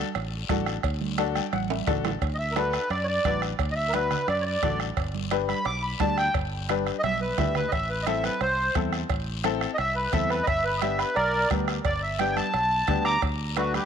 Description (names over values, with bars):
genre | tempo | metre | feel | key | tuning
latin, cumbia | 174 BPM | 4/4 | straight | G major | A4 = 440 Hz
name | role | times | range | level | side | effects
clear upright piano | accompaniment | 0.0-13.8 s | A3 to G5 | -31 LUFS | left 13 dB | none
bombo | percussion | 0.1-13.9 s | none | -31 LUFS | right 2 dB | none
fingered electric bass | bass | 0.2-13.8 s | G1 to F#2 | -32 LUFS | equal | none
congas | percussion | 0.2-13.9 s | none | -35 LUFS | right 12 dB | none
cowbell and timbales | percussion | 0.2-13.7 s | none | -36 LUFS | right 14 dB | none
guiro | percussion | 0.2-13.9 s | none | -40 LUFS | left 14 dB | none
accordion | melody | 2.3-13.9 s | F#4 to D6 | -26 LUFS | right 1 dB | light tremolo tuning
room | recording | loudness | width
moderate plate reverb, RT60 2.3 s | 1960s-style stereo with parts hard left and right | -23 LUFS | side -8 dB against mid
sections
0.0-2.2 A section; 2.2-13.2 B section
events
upright piano fill 1.2-2.2; drum fill 1.5-2.2, 6.7-7.7; accordion solo 2.2-13.2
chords
0.0 D; 2.2 D6; 5.0 G; 7.7 Am; 10.5 G; 13.2 D6